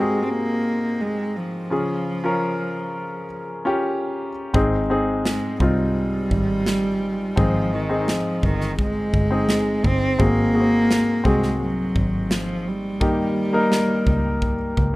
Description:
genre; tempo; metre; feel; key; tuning
piano-driven pop; 85 BPM; 4/4; straight; Ab major; A4 = 440 Hz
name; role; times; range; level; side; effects
warm cello; melody; 0.0-14.8 s; Eb3 to C4; -23 LUFS; right 1 dB; none
clear grand piano; accompaniment; 0.0-15.0 s; Ab2 to Bb4; -23 LUFS; left 1 dB; none
picked electric bass; bass; 4.5-15.0 s; G1 to Eb2; -24 LUFS; equal; none
modern studio drum kit; drums; 4.5-14.9 s; kick drum, snare drum; -25 LUFS; equal; none
room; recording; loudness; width
little or no reverb; rough home demo mix; -19 LUFS; side -20 dB against mid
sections
0.0-15.0 A section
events
none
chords
0.0 Ab7; 1.7 Db; 4.5 Ab; 10.2 Ab7; 13.0 Eb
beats
0.30 1.00 | 1.71 2.42 3.13 3.84 | 4.54 5.25 5.96 6.67 | 7.37 8.08 8.79 9.49 | 10.20 10.90 11.61 12.31 | 13.02 13.73 14.43

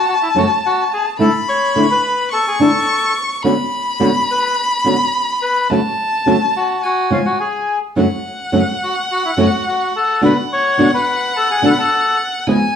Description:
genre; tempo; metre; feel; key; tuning
tango; 106 BPM; 4/4; rubato; unclear; A4 = 440 Hz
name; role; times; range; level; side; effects
bandoneon; melody; 0.0-12.2 s; E4 to C#6; -17 LUFS; left 2 dB; none
warm violin; second line; 0.0-12.8 s; F#5 to C#6; -18 LUFS; left 2 dB; none
flamenco guitar; accompaniment; 0.3-12.6 s; F#2 to G#4; -15 LUFS; right 1 dB; none
room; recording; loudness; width
moderate large studio reverb, RT60 1.0 s; small room ambience; -14 LUFS; side -8 dB against mid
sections
0.0-12.8 A section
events
none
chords
0.0 F#m; 1.2 Dsus2; 3.4 Bmadd9/D; 5.7 F#m/C#; 6.8 C#; 8.0 F#m; 10.2 Bm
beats
0.06 0.63 | 1.19 1.75 2.31 2.88 | 3.44 4.00 4.57 5.13 | 5.69 6.26 6.82 7.39 | 7.96 8.52 9.09 9.65 | 10.22 10.78 11.35 11.91 | 12.48

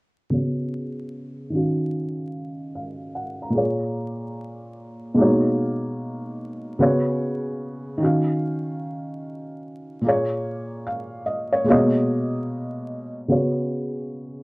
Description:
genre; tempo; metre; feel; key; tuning
hip hop; 74 BPM; 4/4; swing 64% on 16ths; Eb minor; A4 = 440 Hz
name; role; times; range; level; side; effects
felt-muted upright piano; accompaniment; 0.3-14.4 s; Bb2 to Bb5; -22 LUFS; equal; cassette tape, low-pass filter
room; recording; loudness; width
light reverb; rough home demo mix, vinyl crackle, low-pass filter; -21 LUFS; side -26 dB against mid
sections
0.3-13.3 A section; 13.3-14.4 B section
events
filter sweep on felt piano 0.3-13.3; filter sweep 13.3-14.4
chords
0.3 Db7sus4; 1.5 Ebm9; 3.6 Bbm7; 5.2 Abm11/Cb; 6.8 Db7sus4; 8.0 Ebm9; 10.0 Bbm7; 11.7 Abm11/Cb; 13.3 Db7sus4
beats
| 0.31 1.12 1.93 2.74 | 3.55 4.36 5.17 5.99 | 6.80 7.61 8.42 9.23 | 10.04 10.85 11.66 12.47 | 13.28 14.09

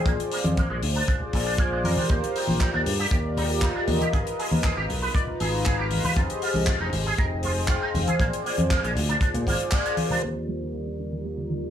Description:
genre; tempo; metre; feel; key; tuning
nu-disco, nu disco; 118 BPM; 4/4; straight; Eb major; A4 = 444 Hz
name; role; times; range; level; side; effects
warm analog pad; accompaniment; 0.0-11.7 s; Eb4 to Bb5; -28 LUFS; equal; chorus, tape echo
electric guitar with an envelope filter; riff; 0.1-11.6 s; Bb2 to D5; -30 LUFS; right 3 dB; ensemble chorus, low-pass filter, tape echo
fingered electric bass; bass; 0.1-11.7 s; F1 to Bb2; -28 LUFS; equal; tube saturation, sidechain pumping
kick drum; drums; 0.1-9.8 s; none; -24 LUFS; equal; none
tight funk drum kit; drums; 0.1-10.3 s; crash cymbal, handclaps, hi-hat; -32 LUFS; left 3 dB; none
congas; percussion; 0.5-10.2 s; none; -30 LUFS; left 2 dB; none
clear symphonic string section; sustained chords; 10.2-11.7 s; G3 to D5; -40 LUFS; equal; sidechain pumping
wide unison pluck; arpeggios; 10.2-11.7 s; D3 to G3; -36 LUFS; right 3 dB; none
room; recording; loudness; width
light reverb, studio reverb; low-pass filter; -22 LUFS; side -10 dB against mid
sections
0.0-10.2 A section; 10.2-11.7 B section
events
band accent 9.7; filter sweep 10.2-11.7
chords
0.1 Bb7; 2.1 Ebmaj7; 4.1 Abm6; 6.2 Fm7; 8.2 Bb7; 10.2 Ebmaj7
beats
| 0.07 0.57 1.08 1.59 | 2.10 2.61 3.12 3.62 | 4.13 4.64 5.15 5.66 | 6.17 6.67 7.18 7.69 | 8.20 8.71 9.22 9.73 | 10.23 10.74 11.25

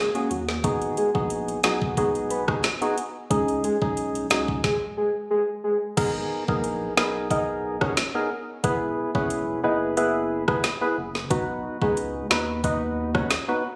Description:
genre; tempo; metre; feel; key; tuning
dancehall; 90 BPM; 4/4; straight; G# minor; A4 = 440 Hz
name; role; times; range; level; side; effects
soft octave-layered synth lead; melody; 0.0-13.3 s; F#4 to E5; -31 LUFS; equal; chorus, tape echo
percussive organ stab; accompaniment; 0.1-13.6 s; G#3 to B4; -28 LUFS; equal; chorus
island pop drum kit; drums; 0.1-13.5 s; crash cymbal, hi-hat, kick drum, rim click, snare drum; -28 LUFS; equal; none
saturated sub bass; bass; 0.3-13.3 s; E1 to D#2; -37 LUFS; equal; none
room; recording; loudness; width
light reverb, digital ambience; recorded on a phone in the room, studio reverb, compression; -25 LUFS; mono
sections
0.0-6.0 A section; 6.0-13.8 B section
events
none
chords
0.0 F#add9; 0.6 G#m7; 3.3 C#sus2; 6.0 G#madd9; 8.6 E; 11.3 B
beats
| 0.64 1.31 1.97 2.64 | 3.31 3.97 4.64 5.31 | 5.97 6.64 7.31 7.97 | 8.64 9.31 9.97 10.64 | 11.31 11.97 12.64 13.31

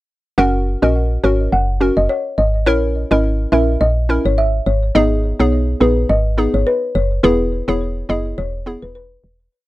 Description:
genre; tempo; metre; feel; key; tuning
dancehall; 105 BPM; 4/4; swing 56% on 16ths; unclear; A4 = 440 Hz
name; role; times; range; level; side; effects
folk marimba with medium mallets; melody; 0.4-9.4 s; B4 to F#5; -20 LUFS; left 1 dB; tape echo
hollow square pluck; accompaniment; 0.4-8.8 s; B3 to A#4; -18 LUFS; equal; chorus
woody FM bass; bass; 0.4-9.5 s; E1 to B1; -18 LUFS; equal; none
room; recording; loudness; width
little or no reverb; dry, gritty hardware recording; -14 LUFS; side -17 dB against mid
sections
0.4-9.5 verse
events
fade-out 7.2-9.5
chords
0.4 F#; 2.7 A#dim; 5.0 G#m; 7.2 E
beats
| 0.38 0.95 1.52 2.09 | 2.67 3.24 3.81 4.38 | 4.95 5.52 6.09 6.67 | 7.24 7.81 8.38 8.95

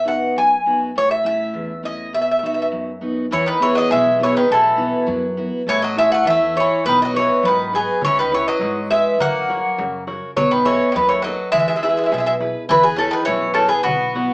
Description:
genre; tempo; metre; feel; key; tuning
greek folk, Greek bouzouki band; 102 BPM; 2/4; straight; E major; A4 = 439 Hz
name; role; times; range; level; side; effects
Greek bouzouki; melody; 0.0-14.3 s; F#4 to G#5; -16 LUFS; equal; none
fingerpicked steel-string acoustic guitar; accompaniment; 0.0-14.3 s; E2 to E5; -22 LUFS; equal; none
Greek bouzouki; second line; 3.3-14.3 s; C#3 to B3; -24 LUFS; left 1 dB; none
upright bass; bass; 3.3-14.3 s; G#1 to G#2; -34 LUFS; equal; none
darbuka; percussion; 8.0-14.3 s; none; -32 LUFS; equal; none
room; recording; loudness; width
wet small room reverb, RT60 0.5 s; band playing live in one room, small speaker sound; -15 LUFS; side -24 dB against mid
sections
0.0-3.3 A section; 3.3-12.7 B section; 12.7-14.3 B section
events
none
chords
0.0 B; 1.0 A; 2.1 B; 3.3 E; 4.5 Bsus4; 5.7 A; 6.8 B; 8.0 C#m7; 9.2 F#; 10.4 B7; 11.5 E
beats
0.36 | 0.95 1.54 | 2.13 2.72 | 3.31 3.90 | 4.49 5.08 | 5.67 6.25 | 6.84 7.43 | 8.01 8.60 | 9.19 9.77 | 10.36 10.94 | 11.52 12.11 | 12.69 13.27 | 13.85

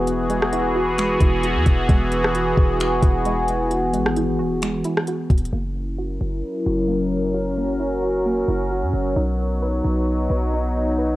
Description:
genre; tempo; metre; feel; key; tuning
hip hop, atmospheric cloud-rap; 132 BPM; 4/4; half-time; unclear; A4 = 440 Hz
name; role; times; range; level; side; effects
sweeping resonant pad; sustained chords; 0.0-11.2 s; E3 to A#4; -21 LUFS; equal; chorus, phaser, sidechain pumping, low-pass filter
soft round pluck; arpeggios; 0.0-11.2 s; G#3 to B4; -30 LUFS; right 3 dB; chorus, low-pass filter, tape echo
warm 808-style bass; bass; 0.0-11.2 s; D#1 to F#2; -25 LUFS; equal; none
smooth R&B drum kit; drums; 0.1-5.5 s; finger snaps, hi-hat, kick drum, rim click; -19 LUFS; equal; cassette tape
room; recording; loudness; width
light reverb; home recording on cassette; -18 LUFS; side -16 dB against mid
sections
0.0-5.5 A section; 5.5-11.2 B section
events
filter sweep 5.5-11.2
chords
0.0 Eadd9; 5.5 F#7; 9.2 B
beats
| 0.07 0.53 0.98 1.44 | 1.89 2.35 2.80 3.25 | 3.71 4.16 4.62 5.07 | 5.53 5.98 6.44 6.89 | 7.35 7.80 8.26 8.71 | 9.16 9.62 10.07 10.53 | 10.98

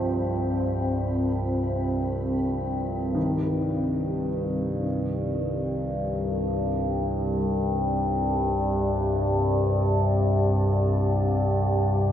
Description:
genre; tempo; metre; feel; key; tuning
dark ambient drone; free time; none; none; C harmonic minor; A4 = 441 Hz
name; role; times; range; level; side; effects
dark analog pad; sustained chords; 0.0-12.1 s; C4 to G5; -28 LUFS; equal; chorus
dark grand piano; arpeggios; 0.0-12.1 s; C2 to F3; -36 LUFS; equal; diffuse ambient delay
overtone-sweeping drone; drone; 0.0-12.1 s; C2 to G2; -25 LUFS; equal; chorus, built-in reverb, phaser
flickering grainy texture; texture; 0.0-3.2 s; B5; -56 LUFS; right 1 dB; built-in reverb
room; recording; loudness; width
wet cathedral reverb, RT60 6.2 s; dark, warm production, nothing above 11.0 kHz; -23 LUFS; side -10 dB against mid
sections
0.0-3.2 A section; 3.2-12.1 B section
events
none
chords
0.0 Fsus2/C; 3.2 Cmadd9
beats
free time

